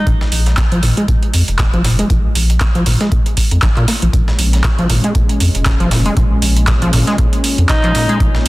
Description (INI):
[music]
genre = acid house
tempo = 118 BPM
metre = 4/4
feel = swing 57% on 16ths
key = Bb phrygian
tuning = A4 = 440 Hz
[part]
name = clear alto saxophone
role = melody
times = 0.0-0.1, 7.7-8.2 s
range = Eb4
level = -21 LUFS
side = equal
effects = dub echo
[part]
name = deep acid bass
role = riff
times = 0.0-8.3 s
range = Bb1 to Bb3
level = -18 LUFS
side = equal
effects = sidechain pumping, tape echo
[part]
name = round analog bass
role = bass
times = 0.1-8.5 s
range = F1 to F2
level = -16 LUFS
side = equal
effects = sidechain pumping
[part]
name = breakbeat sampler-style drum kit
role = drums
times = 0.1-8.5 s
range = hi-hat, snare drum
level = -28 LUFS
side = equal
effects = sidechain pumping on hats, high-pass filter on hats, high-pass filter on snare
[part]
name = electronic kick drum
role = drums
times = 0.1-8.3 s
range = none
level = -16 LUFS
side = equal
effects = none
[part]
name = booming analog drum machine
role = drums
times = 0.3-8.5 s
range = handclaps, hi-hat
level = -20 LUFS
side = right 1 dB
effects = none
[part]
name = warm analog pad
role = sustained chords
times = 4.1-8.5 s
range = Bb2 to Db4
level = -22 LUFS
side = left 1 dB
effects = chorus, sidechain pumping
[sound]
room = light reverb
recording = dense, heavily limited modern master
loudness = -11 LUFS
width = side -19 dB against mid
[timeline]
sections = 0.0-8.5 A section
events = filter sweep on acid bass 0.0-8.5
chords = 0.0 Bbm7